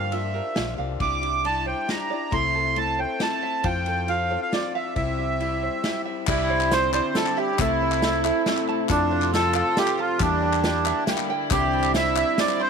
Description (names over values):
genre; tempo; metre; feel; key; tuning
indie folk with a building arrangement; 137 BPM; 3/4; straight; unclear; A4 = 441 Hz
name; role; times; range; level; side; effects
accordion; melody; 0.0-12.7 s; D4 to D6; -24 LUFS; right 3 dB; tape echo
picked old ladder-braced acoustic guitar; accompaniment; 0.0-12.7 s; G2 to A4; -30 LUFS; left 16 dB; none
tenor ukulele; arpeggios; 0.0-12.7 s; D4 to C6; -33 LUFS; right 12 dB; none
hollow-body short-scale fingered electric bass; bass; 0.0-12.2 s; Bb1 to G2; -29 LUFS; left 1 dB; none
unplugged drum kit; drums; 0.1-12.5 s; crash cymbal, hi-hat, kick drum, ride cymbal, snare drum; -29 LUFS; left 1 dB; none
warm trombone; second line; 6.3-12.7 s; C4 to G4; -29 LUFS; right 12 dB; none
warm studio string section; sustained chords; 6.3-12.7 s; C3 to F4; -33 LUFS; left 4 dB; none
group handclap; percussion; 6.3-12.7 s; none; -33 LUFS; left 16 dB; none
tambourine; percussion; 11.5-12.5 s; none; -41 LUFS; left 20 dB; none
room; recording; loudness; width
light reverb, studio ambience; 1960s-style stereo with parts hard left and right; -21 LUFS; side -6 dB against mid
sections
0.0-6.3 A section; 6.3-12.7 B section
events
none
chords
0.0 Gm7; 1.0 Cadd9; 2.3 Am/C; 3.6 F; 5.0 C; 6.3 Cadd9; 7.6 Am/C; 8.9 F; 10.2 Em7b5; 11.5 Cadd9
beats
0.13 0.57 | 1.01 1.45 1.89 | 2.33 2.77 3.21 | 3.65 4.09 4.53 | 4.96 5.40 5.84 | 6.28 6.71 7.15 | 7.59 8.03 8.46 | 8.90 9.33 9.77 | 10.21 10.64 11.08 | 11.51 11.95 12.38